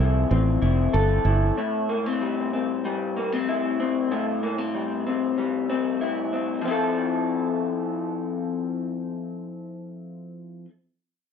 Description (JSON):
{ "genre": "indie pop, bedroom pop", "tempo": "95 BPM", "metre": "4/4", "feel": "straight", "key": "F major", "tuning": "A4 = 437 Hz", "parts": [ { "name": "electric guitar through a small old amp", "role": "accompaniment", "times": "0.0-10.7 s", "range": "A2 to A4", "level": "-24 LUFS", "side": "left 4 dB", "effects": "analog chorus, warbly pitch drift" }, { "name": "fingered electric bass", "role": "bass", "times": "0.0-1.5 s", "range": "F1 to C2", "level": "-20 LUFS", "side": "right 2 dB", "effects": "none" } ], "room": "wet studio reverb, RT60 0.6 s", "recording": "dark, warm production", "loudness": "-22 LUFS", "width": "side -7 dB against mid", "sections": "0.0-6.6 A section; 6.6-9.2 B section", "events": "none", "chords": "0.0 Fmaj7; 1.6 Am7; 6.6 Fmaj7" }